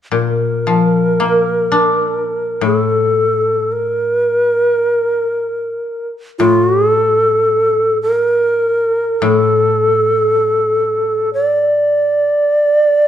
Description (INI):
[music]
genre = japanese traditional, Japanese chamber music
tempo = free time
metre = none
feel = none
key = unclear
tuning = A4 = 441 Hz
[part]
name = bright long shakuhachi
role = melody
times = 0.1-13.1 s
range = A4 to D5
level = -13 LUFS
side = right 1 dB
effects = none
[part]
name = koto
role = accompaniment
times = 0.1-12.3 s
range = A2 to D4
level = -18 LUFS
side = left 5 dB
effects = none
[sound]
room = moderate recital hall reverb, RT60 1.7 s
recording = dark, warm production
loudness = -12 LUFS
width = side -10 dB against mid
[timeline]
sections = 0.0-13.1 A section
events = none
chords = none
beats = free time